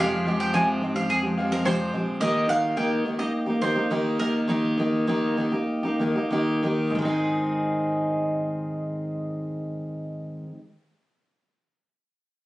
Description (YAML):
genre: pop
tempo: 91-108 BPM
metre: 4/4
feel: straight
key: Ab major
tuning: A4 = 441 Hz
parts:
  - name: bright grand piano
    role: accompaniment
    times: 0.0-2.2 s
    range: Ab3 to G5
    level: -34 LUFS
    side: left 1 dB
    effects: none
  - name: picked steel-string acoustic guitar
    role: accompaniment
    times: 0.0-10.6 s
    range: F2 to Ab4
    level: -24 LUFS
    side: equal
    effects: none
  - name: bowl-back mandolin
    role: arpeggios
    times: 0.0-4.3 s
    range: Ab4 to Ab5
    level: -26 LUFS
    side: right 1 dB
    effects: none
  - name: tine electric piano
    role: bass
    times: 0.0-2.2 s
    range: Bb1 to Ab2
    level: -33 LUFS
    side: right 1 dB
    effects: none
room: moderate studio reverb, RT60 0.8 s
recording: recorded on a phone in the room, studio reverb, nothing above 10.6 kHz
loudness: -23 LUFS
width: side -17 dB against mid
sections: 0.0-7.0 A section; 7.0-9.6 B section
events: grand piano fill 1.1-2.2; slowing down 2.2-7.0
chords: 0.0 Fmadd9; 2.2 Eb; 7.0 Ab